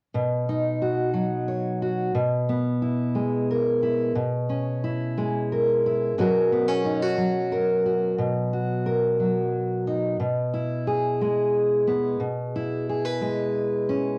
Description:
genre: folk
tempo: 60 BPM (dotted quarters)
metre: 6/8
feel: straight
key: B major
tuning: A4 = 438 Hz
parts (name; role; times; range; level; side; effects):
- fingerpicked steel-string acoustic guitar; accompaniment; 0.1-14.2 s; B2 to C#5; -25 LUFS; equal; cassette tape
room: wet studio reverb, RT60 0.6 s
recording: home recording on cassette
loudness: -25 LUFS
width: mono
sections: 0.1-8.2 A section; 8.2-14.2 B section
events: none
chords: 0.1 B; 2.2 E/B; 4.2 C#m/B; 6.2 F#/B; 8.2 B; 10.2 E/B; 12.2 C#m/B

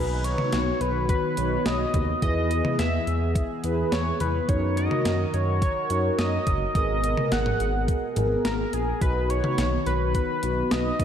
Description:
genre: synth-pop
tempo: 106 BPM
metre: 4/4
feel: straight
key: B major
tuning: A4 = 440 Hz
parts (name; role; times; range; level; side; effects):
- octave-doubled lead; melody; 0.0-11.0 s; G#4 to F#5; -28 LUFS; equal; chorus, diffuse ambient delay
- mellow synth brass; accompaniment; 0.0-10.9 s; B3 to C#5; -31 LUFS; equal; chorus
- warm analog pad; sustained chords; 0.0-11.0 s; B2 to A#4; -31 LUFS; left 1 dB; chorus
- smooth synth bass; bass; 0.0-11.0 s; F#1 to F#2; -27 LUFS; equal; none
- clean 12-bit digital drum machine; drums; 0.2-11.0 s; hi-hat, kick drum, snare drum, toms; -28 LUFS; equal; overdrive
room: wet lush hall reverb, RT60 2.0 s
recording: dreamy mix soaked in reverb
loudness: -22 LUFS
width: side -9 dB against mid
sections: 0.0-11.0 A section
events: none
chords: 0.0 B; 2.2 E; 4.5 F#6; 6.8 G#madd9; 9.0 B

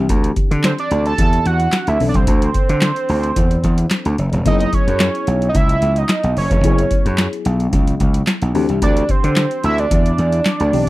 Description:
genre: early-eighties boogie funk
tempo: 110 BPM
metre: 4/4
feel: straight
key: unclear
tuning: A4 = 440 Hz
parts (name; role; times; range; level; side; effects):
- mellow FM electric piano; accompaniment; 0.0-10.9 s; E3 to A4; -25 LUFS; left 5 dB; chorus, phaser
- gritty slap bass; bass; 0.0-10.8 s; E1 to D3; -17 LUFS; equal; overdrive
- booming analog drum machine; drums; 0.1-10.9 s; handclaps, hi-hat, kick drum, snare drum; -17 LUFS; equal; overdrive
- fat analog lead; melody; 0.7-10.9 s; C5 to A5; -20 LUFS; right 3 dB; chorus
room: little or no reverb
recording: dry, close 1970s-style studio recording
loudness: -14 LUFS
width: side -17 dB against mid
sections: 0.0-10.9 A section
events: none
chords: 0.0 D9sus4; 4.5 F#9sus4; 8.5 D9sus4

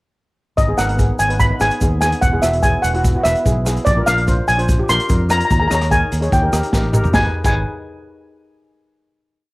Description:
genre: calypso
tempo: 146 BPM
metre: 4/4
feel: straight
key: G# minor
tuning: A4 = 441 Hz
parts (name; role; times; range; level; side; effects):
- steel pan; melody; 0.6-7.6 s; D5 to B#5; -18 LUFS; equal; plate reverb
- fingered electric bass; bass; 0.6-7.6 s; E1 to E#2; -20 LUFS; equal; none
- vintage drum kit; drums; 0.6-7.5 s; crash cymbal, hi-hat, kick drum, rim click, snare drum, toms; -19 LUFS; equal; none
- egg shaker; percussion; 0.6-7.6 s; none; -31 LUFS; right 2 dB; none
- steel pan; accompaniment; 0.7-7.6 s; B3 to C#5; -23 LUFS; equal; plate reverb
room: light reverb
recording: home recording on cassette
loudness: -14 LUFS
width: side -21 dB against mid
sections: 0.6-7.1 verse; 7.1-8.8 final chord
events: drum fill 6.7-7.1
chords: 0.6 G#m7; 2.2 E; 3.9 A#7; 5.5 D#sus4; 6.3 D#; 7.1 G#m

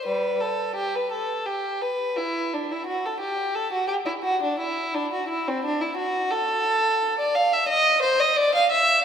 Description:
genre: classical, baroque-style suite movement for unaccompanied violin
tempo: 87 BPM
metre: 3/4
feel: rubato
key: G major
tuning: A4 = 440 Hz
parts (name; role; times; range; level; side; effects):
- dark violin; solo; 0.0-9.0 s; G3 to F5; -21 LUFS; equal; none
room: wet church reverb, RT60 2.6 s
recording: recorded in a church or concert hall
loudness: -21 LUFS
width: side -8 dB against mid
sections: 0.0-9.0 A section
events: none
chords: none

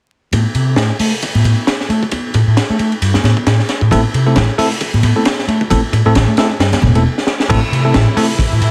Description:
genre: breakbeat, breaks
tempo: 134 BPM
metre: 4/4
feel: swing 57% on 16ths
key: A minor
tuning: A4 = 440 Hz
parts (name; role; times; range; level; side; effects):
- overdriven picked electric bass; riff; 0.3-8.7 s; G2 to A3; -16 LUFS; equal; low-pass filter
- crunchy breakbeat drum kit; drums; 0.3-8.7 s; crash cymbal, hi-hat, kick drum, ride cymbal, snare drum; -20 LUFS; equal; high-pass filter on kick, high-pass filter on cymbals, high-pass filter on hats, high-pass filter on snare, high-pass filter on room
- congas; percussion; 0.3-6.9 s; none; -26 LUFS; equal; none
- bell-like tine electric piano; stabs; 3.9-8.3 s; A3 to A4; -20 LUFS; equal; vintage 12-bit sampler grit, tape echo
- upright bass; bass; 3.9-8.0 s; E1 to A1; -17 LUFS; equal; none
- rich chamber string section; sustained chords; 7.5-8.7 s; C3 to E4; -25 LUFS; equal; sidechain pumping
room: little or no reverb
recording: vinyl crackle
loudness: -14 LUFS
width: mono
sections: 0.3-7.5 A section; 7.5-8.7 B section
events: filter sweep on picked electric bass 0.3-7.5; stop 7.0-7.5; drum fill 7.2-7.5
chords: 0.3 Am

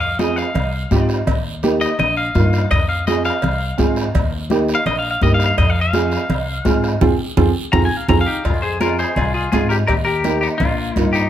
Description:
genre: latin, cumbia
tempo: 167 BPM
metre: 4/4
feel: straight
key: F minor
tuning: A4 = 440 Hz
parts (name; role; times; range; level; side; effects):
- clean electric guitar; melody; 0.0-11.3 s; Bb3 to Bb5; -21 LUFS; left 3 dB; spring reverb, plate reverb
- upright bass; bass; 0.0-11.3 s; Bb1 to Ab2; -21 LUFS; equal; none
- dark upright piano; accompaniment; 0.2-11.2 s; Bb3 to Ab4; -20 LUFS; right 4 dB; none
- bombo; percussion; 0.2-11.3 s; none; -22 LUFS; left 1 dB; none
- congas; percussion; 0.2-11.1 s; none; -24 LUFS; left 1 dB; none
- guiro; percussion; 0.2-11.3 s; none; -35 LUFS; right 4 dB; none
- cowbell and timbales; percussion; 0.6-11.1 s; none; -27 LUFS; right 7 dB; none
- clear clarinet; second line; 8.3-11.3 s; Bb3 to Ab4; -26 LUFS; left 4 dB; none
room: light reverb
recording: none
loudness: -15 LUFS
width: side -11 dB against mid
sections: 0.0-8.5 A section; 8.5-11.3 B section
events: clean electric guitar solo 0.0-8.5; band accent 7.0-8.5; drum fill 7.6-8.5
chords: 0.0 Fm; 1.3 Eb; 2.7 Fm; 4.1 Eb; 5.6 Fm; 9.9 Eb

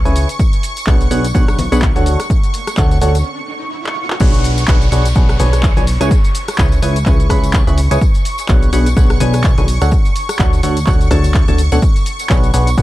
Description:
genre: piano house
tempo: 126 BPM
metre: 4/4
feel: swing 57% on 16ths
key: B dorian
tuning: A4 = 440 Hz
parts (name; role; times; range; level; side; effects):
- analog string pad; sustained chords; 0.0-12.8 s; C#6; -25 LUFS; right 2 dB; ensemble chorus, phaser, sidechain pumping
- plucky analog bass; bass; 0.0-12.8 s; B1 to D2; -15 LUFS; equal; tube saturation, sidechain pumping
- congas and tambourine; percussion; 0.0-12.8 s; none; -28 LUFS; left 4 dB; none
- percussive organ stab; riff; 0.1-12.8 s; B2 to B5; -19 LUFS; equal; chorus, phaser, cassette tape, sidechain pumping, dub echo
- punchy analog drum machine; drums; 0.1-12.8 s; crash cymbal, handclaps, hi-hat, rim click, shaker; -24 LUFS; left 1 dB; none
- electronic kick drum; drums; 0.4-12.8 s; none; -13 LUFS; equal; none
- riser and downlifter; sound effects; 2.3-8.0 s; none; -29 LUFS; right 2 dB; none
room: digital ambience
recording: dark, warm production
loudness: -11 LUFS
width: side -16 dB against mid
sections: 0.0-4.2 A section; 4.2-12.8 B section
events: riser 2.3-4.2; break 3.3-4.2; drum fill 3.8-4.2; drop 4.2-12.8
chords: 0.4 Bm69; 2.1 Dmaj7; 4.2 Bm69; 5.9 C#m7; 8.0 Bm69; 9.7 Dmaj7; 11.8 Bm69

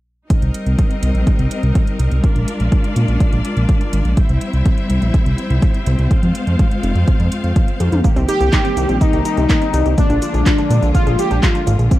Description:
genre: italo disco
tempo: 124 BPM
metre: 4/4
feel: straight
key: C minor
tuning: A4 = 440 Hz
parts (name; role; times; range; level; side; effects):
- bright studio string section; sustained chords; 0.3-12.0 s; C3 to F5; -23 LUFS; left 1 dB; none
- electronic kick drum; drums; 0.3-12.0 s; none; -15 LUFS; equal; studio reverb
- house drum kit; drums; 0.3-12.0 s; cabasa, handclaps, hi-hat, toms; -26 LUFS; equal; studio reverb
- fat analog bass; bass; 0.4-11.9 s; F1 to Bb2; -16 LUFS; equal; tube saturation
- wide unison pluck; arpeggios; 8.0-12.0 s; Bb3 to Ab4; -25 LUFS; right 2 dB; tape echo
- analog synth brass; melody; 8.3-11.8 s; D4 to G4; -18 LUFS; left 2 dB; chorus, tape echo
room: digital ambience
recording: dry, close 1970s-style studio recording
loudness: -13 LUFS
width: side -16 dB against mid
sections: 0.3-8.0 A section; 8.0-12.0 B section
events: filter sweep on analog synth bass 0.3-8.0; drum fill 7.8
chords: 0.3 Cm7; 2.2 Bb7; 4.2 C; 6.1 Fm; 8.0 Cm7; 10.0 Bb7

